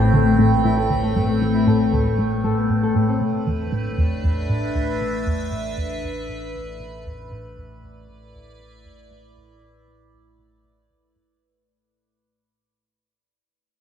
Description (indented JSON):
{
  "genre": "ambient",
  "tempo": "117 BPM",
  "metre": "4/4",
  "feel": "straight",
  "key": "unclear",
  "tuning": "A4 = 439 Hz",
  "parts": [
    { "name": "evolving wavetable pad", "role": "sustained chords", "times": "0.0-11.4 s", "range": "A2 to G5", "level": "-22 LUFS", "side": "left 2 dB", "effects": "phaser, built-in reverb" },
    { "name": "tight sequenced synth", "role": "riff", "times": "0.0-11.2 s", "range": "D2 to E3", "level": "-23 LUFS", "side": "right 1 dB", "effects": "chorus, phaser, ping-pong delay" },
    { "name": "analog drone", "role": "bass", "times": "0.0-11.4 s", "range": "A1", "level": "-28 LUFS", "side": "right 1 dB", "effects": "chorus" },
    { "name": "mellow electric guitar", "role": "arpeggios", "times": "0.1-3.2 s", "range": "A3 to A4", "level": "-26 LUFS", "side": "left 2 dB", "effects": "auto-pan, ping-pong delay" }
  ],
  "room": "wet concert hall reverb, RT60 2.3 s",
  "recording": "dark, warm production",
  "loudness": "-18 LUFS",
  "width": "side -8 dB against mid",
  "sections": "0.0-11.4 A section",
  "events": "fade-out 0.0-11.4",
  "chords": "0.0 Am7; 3.2 E7sus4/A",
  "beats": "0.13 0.65 | 1.16 1.67 2.18 2.70 | 3.21 3.72 4.24 4.75 | 5.26 5.77 6.29 6.80 | 7.31 7.83 8.34 8.85 | 9.36 9.88 10.39 10.90"
}